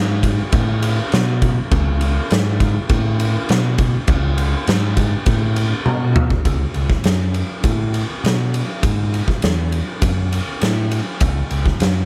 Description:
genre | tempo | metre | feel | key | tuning
stoner and doom metal | 101 BPM | 4/4 | straight | C# minor | A4 = 438 Hz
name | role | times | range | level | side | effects
overdriven picked electric bass | bass | 0.0-12.1 s | C#2 to B2 | -21 LUFS | equal | none
oversized low-tuned drum kit | drums | 0.2-12.0 s | kick drum, ride cymbal, snare drum, toms | -21 LUFS | equal | none
room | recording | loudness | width
little or no reverb | none | -18 LUFS | mono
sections
0.0-6.5 A section; 6.5-12.1 B section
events
drum fill 5.9-6.5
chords
none

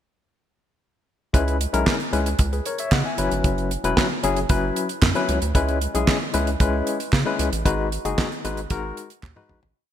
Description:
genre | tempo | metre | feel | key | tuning
early-eighties boogie funk | 114 BPM | 4/4 | straight | C# dorian | A4 = 440 Hz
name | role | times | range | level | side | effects
barky tine electric piano | accompaniment | 1.3-9.6 s | F#3 to G#5 | -24 LUFS | left 4 dB | fast tremolo
rubbery square bass | bass | 1.3-9.7 s | E1 to C#3 | -25 LUFS | right 1 dB | none
damped 70s drum kit | drums | 1.3-9.8 s | hi-hat, kick drum, snare drum, toms | -23 LUFS | right 1 dB | gated reverb
group handclap | percussion | 1.9-9.4 s | none | -32 LUFS | right 6 dB | none
room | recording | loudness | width
light reverb, small room reverb | bright 1980s-style digital production | -20 LUFS | side -10 dB against mid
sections
1.3-9.8 verse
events
fade-out 7.7-9.8; drum fill 9.2-9.8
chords
1.3 C#m7; 3.2 F#7sus4; 5.5 C#m7; 7.7 G#m7

